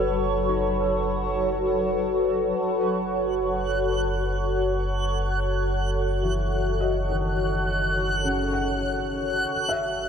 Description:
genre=ambient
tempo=free time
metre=none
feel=none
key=unclear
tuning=A4 = 444 Hz
part: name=shimmering ambient pad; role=sustained chords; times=0.0-10.1 s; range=F#3 to C#5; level=-24 LUFS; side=left 1 dB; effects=chorus, built-in reverb, phaser
part: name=felt-muted upright piano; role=arpeggios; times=0.0-10.1 s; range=C#3 to E6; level=-32 LUFS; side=equal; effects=diffuse ambient delay
part: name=warm sub bass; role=bass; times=0.0-10.1 s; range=F#1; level=-29 LUFS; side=equal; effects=none
part: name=backwards swelling texture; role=texture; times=2.9-10.1 s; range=F#6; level=-30 LUFS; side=right 1 dB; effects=built-in reverb
room=wet huge ambient reverb, RT60 7.7 s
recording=cassette tape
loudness=-22 LUFS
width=side -7 dB against mid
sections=0.0-2.6 A section; 2.6-10.1 B section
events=fade-in on felt piano 2.6-10.1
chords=0.0 Aadd9/F#; 9.5 N.C.

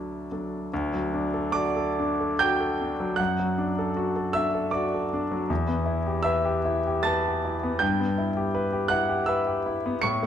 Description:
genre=classical, romantic nocturne for solo piano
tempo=67-84 BPM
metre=3/4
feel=rubato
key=D major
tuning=A4 = 440 Hz
part: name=warm concert grand piano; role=solo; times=0.0-10.3 s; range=D2 to C#7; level=-24 LUFS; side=equal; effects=none
room=moderate recital hall reverb, RT60 1.6 s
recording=none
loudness=-24 LUFS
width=side -9 dB against mid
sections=0.7-10.3 A section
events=none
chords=0.0 D; 3.2 D/F#; 5.5 Em; 7.8 Em/G

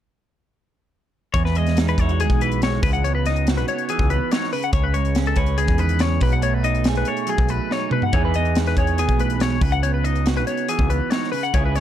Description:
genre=math rock and midwest emo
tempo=141 BPM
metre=4/4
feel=straight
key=E major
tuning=A4 = 440 Hz
part: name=twelve-string electric guitar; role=arpeggios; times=1.3-11.8 s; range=G#4 to F#5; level=-24 LUFS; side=left 8 dB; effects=none
part: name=growling picked electric bass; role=bass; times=1.3-11.8 s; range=B1 to E2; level=-21 LUFS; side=equal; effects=overdrive
part: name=crisp fusion drum kit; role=drums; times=1.3-11.8 s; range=hi-hat, kick drum, snare drum, toms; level=-23 LUFS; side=equal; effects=none
part: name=electric guitar through a small old amp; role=accompaniment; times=1.4-11.8 s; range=E2 to B4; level=-26 LUFS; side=right 13 dB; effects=none
room=little or no reverb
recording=dark, warm production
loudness=-18 LUFS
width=side -11 dB against mid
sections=1.3-11.8 A section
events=drum fill 7.7-8.1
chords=1.3 Emaj9; 2.8 C#m11; 4.7 Amaj7/C# (rootless); 6.2 B13; 8.1 Emaj7; 9.6 C#m11

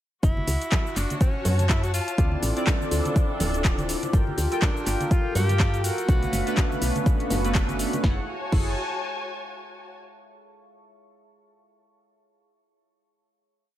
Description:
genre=deep house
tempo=123 BPM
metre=4/4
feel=swing 57% on 16ths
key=unclear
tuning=A4 = 439 Hz
part: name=clear tenor saxophone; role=melody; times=0.2-6.8 s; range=C#4 to G4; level=-32 LUFS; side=equal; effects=vintage 12-bit sampler grit, ping-pong delay
part: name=woody FM bass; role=bass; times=0.2-8.8 s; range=D1 to G2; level=-26 LUFS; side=equal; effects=sidechain pumping
part: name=deep house drum kit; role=drums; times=0.2-8.6 s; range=crash cymbal, handclaps, hi-hat, shaker, snare drum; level=-31 LUFS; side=left 1 dB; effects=overdrive
part: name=electronic kick drum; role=drums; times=0.2-8.6 s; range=none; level=-22 LUFS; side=equal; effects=overdrive
part: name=muted studio string section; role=texture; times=0.2-9.9 s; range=B3 to A5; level=-33 LUFS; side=left 1 dB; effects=sidechain pumping
part: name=congas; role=percussion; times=0.4-8.0 s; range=none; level=-34 LUFS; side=right 2 dB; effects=none
part: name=chorused polysynth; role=stabs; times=2.2-8.7 s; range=A3 to G5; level=-29 LUFS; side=equal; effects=sidechain pumping, dub echo
part: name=deep dark ambient pad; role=sustained chords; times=4.9-8.3 s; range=F5 to C#6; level=-38 LUFS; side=left 1 dB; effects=chorus, built-in reverb, sidechain pumping
room=light reverb, digital ambience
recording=none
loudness=-22 LUFS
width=side -13 dB against mid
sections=0.2-8.0 groove; 8.0-10.0 final chord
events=none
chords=0.2 F#m7; 2.2 Dm9; 4.1 Gm9; 6.1 Bm9; 8.0 F#m9

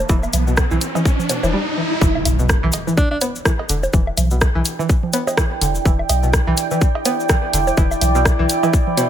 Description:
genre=minimal techno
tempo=125 BPM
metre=4/4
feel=swing 58% on 16ths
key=E minor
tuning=A4 = 440 Hz
part: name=punchy sub bass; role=bass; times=0.0-8.5 s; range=E1 to B1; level=-20 LUFS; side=equal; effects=sidechain pumping
part: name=riser and impact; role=sound effects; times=0.0-3.9 s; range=none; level=-23 LUFS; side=right 1 dB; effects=none
part: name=deep dark ambient pad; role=texture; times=0.0-9.1 s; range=E4 to A5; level=-23 LUFS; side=right 3 dB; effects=chorus, built-in reverb, sidechain pumping
part: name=string-like resonator pluck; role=riff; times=0.1-9.0 s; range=B2 to B3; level=-24 LUFS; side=left 1 dB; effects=chorus, sidechain pumping, ping-pong delay
part: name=electronic kick drum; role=drums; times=0.1-8.8 s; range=none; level=-17 LUFS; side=equal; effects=none
part: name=cabasa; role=percussion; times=0.1-9.1 s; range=none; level=-29 LUFS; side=left 4 dB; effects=none
part: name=cowbell, woodblock, congas and bongos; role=percussion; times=0.1-9.1 s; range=none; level=-25 LUFS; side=right 4 dB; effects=dub echo
part: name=garage drum kit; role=drums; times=0.3-9.1 s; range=hi-hat, rim click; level=-22 LUFS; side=right 1 dB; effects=none
part: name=edgy alto saxophone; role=melody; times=3.0-3.2 s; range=D4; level=-24 LUFS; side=right 1 dB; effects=dub echo
room=light reverb, digital ambience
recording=none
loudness=-15 LUFS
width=side -10 dB against mid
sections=0.0-2.0 A section; 2.0-9.1 B section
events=riser 0.0-2.0; break 1.5-2.0; drop 2.0-9.1; impact 2.0-3.9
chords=0.0 E7(no3); 2.0 Em7

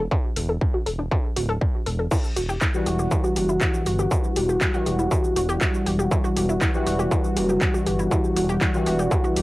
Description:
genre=melodic techno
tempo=120 BPM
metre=4/4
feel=straight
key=E minor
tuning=A4 = 437 Hz
part: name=analog pluck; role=arpeggios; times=0.0-9.4 s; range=D4 to A4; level=-29 LUFS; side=equal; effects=chorus, sidechain pumping, analog delay
part: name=dark detuned saw bass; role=bass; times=0.0-9.4 s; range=D1 to G1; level=-26 LUFS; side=equal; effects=sidechain pumping
part: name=electronic kick drum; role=drums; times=0.1-9.2 s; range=none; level=-23 LUFS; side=equal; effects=distortion, overdrive, cassette tape
part: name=punchy analog drum machine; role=drums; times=0.4-9.4 s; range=crash cymbal, handclaps, hi-hat, shaker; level=-29 LUFS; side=equal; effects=cassette tape
part: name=analog synth brass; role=stabs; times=2.7-9.4 s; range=E3 to F#4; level=-23 LUFS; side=left 1 dB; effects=chorus, sidechain pumping, analog delay
room=moderate booth ambience, RT60 0.2 s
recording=home recording on cassette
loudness=-20 LUFS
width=side -18 dB against mid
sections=0.0-9.4 A section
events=filter sweep on synth arpeggio sound 0.0-9.4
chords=0.0 D5/E; 2.1 Emadd9

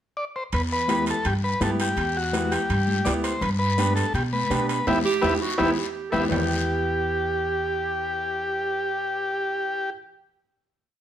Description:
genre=latin, cumbia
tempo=166 BPM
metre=4/4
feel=straight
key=E minor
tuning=A4 = 440 Hz
part: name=combo organ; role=melody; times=0.2-9.9 s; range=F#4 to E5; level=-26 LUFS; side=left 2 dB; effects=none
part: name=upright bass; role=bass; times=0.5-9.9 s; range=D2 to B2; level=-28 LUFS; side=equal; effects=none
part: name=guiro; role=percussion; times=0.5-6.4 s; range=none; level=-36 LUFS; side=left 7 dB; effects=none
part: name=timbales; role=percussion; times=0.5-6.4 s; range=none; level=-34 LUFS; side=right 6 dB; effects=none
part: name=clear upright piano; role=accompaniment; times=0.9-9.9 s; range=B3 to G4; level=-29 LUFS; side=right 2 dB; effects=none
part: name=congas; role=percussion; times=0.9-6.4 s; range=none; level=-32 LUFS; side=left 6 dB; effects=none
part: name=clear clarinet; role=second line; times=5.1-9.9 s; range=E4 to A4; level=-30 LUFS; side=right 6 dB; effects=none
room=moderate large studio reverb, RT60 1.0 s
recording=none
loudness=-22 LUFS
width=side -10 dB against mid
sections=0.0-0.5 pickup bar; 0.5-6.3 A section; 6.3-9.2 final chord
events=band accent 4.9-6.3; drum fill 5.2-6.3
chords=0.0 N.C.; 0.5 Em; 3.4 G; 4.9 Em

